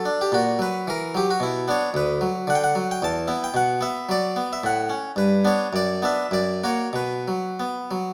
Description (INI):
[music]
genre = classical, baroque-style suite movement for harpsichord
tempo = 93-113 BPM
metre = 3/4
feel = rubato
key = B minor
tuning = A4 = 441 Hz
[part]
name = harpsichord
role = solo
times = 0.0-8.1 s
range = D2 to A5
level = -24 LUFS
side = equal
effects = none
[sound]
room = moderate recital hall reverb, RT60 1.4 s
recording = none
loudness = -23 LUFS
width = mono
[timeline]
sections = 0.0-8.1 A section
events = none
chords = 0.3 F#7/A#; 1.4 Bm; 1.9 Bm/D; 3.0 E5; 3.5 B5; 4.6 F#m/A; 5.2 G; 5.7 Bm/F#; 6.3 F#; 7.0 B5